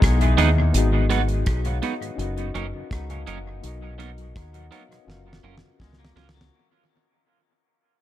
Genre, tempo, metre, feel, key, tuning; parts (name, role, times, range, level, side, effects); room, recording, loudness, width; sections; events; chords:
lovers rock reggae; 83 BPM; 4/4; straight; F# major; A4 = 439 Hz
mellow tine electric piano; accompaniment; 0.0-6.5 s; B3 to A#5; -30 LUFS; left 6 dB; medium stereo tremolo, dub echo
twangy electric guitar; arpeggios; 0.0-0.5, 5.8-6.7 s; F#3 to A#3; -37 LUFS; left 6 dB
deep dub fingered electric bass; bass; 0.0-6.5 s; F#1 to D#2; -23 LUFS; equal
damped 70s drum kit; drums; 0.0-6.6 s; hi-hat, kick drum, rim click, snare drum; -24 LUFS; equal; gated reverb, dub echo
mellow tonewheel organ; accompaniment; 0.2-6.4 s; E2 to E#4; -33 LUFS; right 5 dB; slow rotary speaker
electric guitar through a small old amp; stabs; 0.4-6.3 s; F#3 to B4; -27 LUFS; right 7 dB; wide subtle chorus, dub echo
small room ambience; -20 LUFS; side -13 dB against mid
0.0-6.5 A section
fade-out 0.0-6.5; tine electric piano fill 0.0-0.7; drum fill 5.1-6.5
0.0 Emaj7; 0.7 G#m7; 2.2 F#6; 3.6 Bmaj7; 5.1 F#maj7